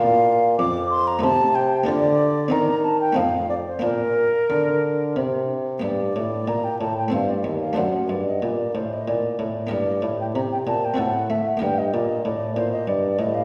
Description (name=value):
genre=classical, baroque-style sonata movement with continuo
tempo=93 BPM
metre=3/4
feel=rubato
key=Bb major, G minor from 5.8 s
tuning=A4 = 442 Hz
part: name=baroque flute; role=melody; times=0.0-13.4 s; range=Bb4 to D6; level=-25 LUFS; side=equal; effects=none
part: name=buff-stop harpsichord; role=accompaniment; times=0.0-13.4 s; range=Eb2 to C5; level=-30 LUFS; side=equal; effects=none
part: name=mellow bassoon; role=bass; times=0.0-13.4 s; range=Eb2 to A3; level=-26 LUFS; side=equal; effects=none
room=wet recital hall reverb, RT60 1.5 s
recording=heard from further back in the room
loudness=-22 LUFS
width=mono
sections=0.0-5.8 A section; 5.8-13.4 A section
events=none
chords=0.0 Bb; 1.2 Adim/C; 1.9 Bb/D; 2.5 Cm/Eb; 3.2 F7; 3.8 Bb; 5.8 Gm; 7.1 Am7b5/G; 7.8 D7/F#; 9.7 Gm; 11.0 F#dim/A; 11.6 Gmadd9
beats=0.59 1.23 | 1.87 2.52 3.17 | 3.83 4.50 5.17 | 5.83 6.48 7.13 | 7.78 8.43 9.07 | 9.71 10.35 10.99 | 11.62 12.25 12.88